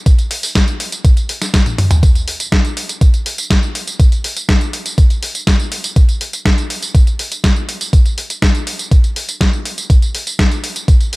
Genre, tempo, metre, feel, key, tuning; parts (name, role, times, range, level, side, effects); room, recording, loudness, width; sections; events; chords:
italo disco; 122 BPM; 4/4; straight
detuned 8-bit digital drum machine; drums; 0.1-11.2 s; hi-hat, snare drum, tambourine, toms; -18 LUFS; equal
electronic kick drum; drums; 0.1-11.0 s; -11 LUFS; equal
digital ambience; -12 LUFS; side -23 dB against mid
0.0-11.2 A section
drum fill 1.7-2.0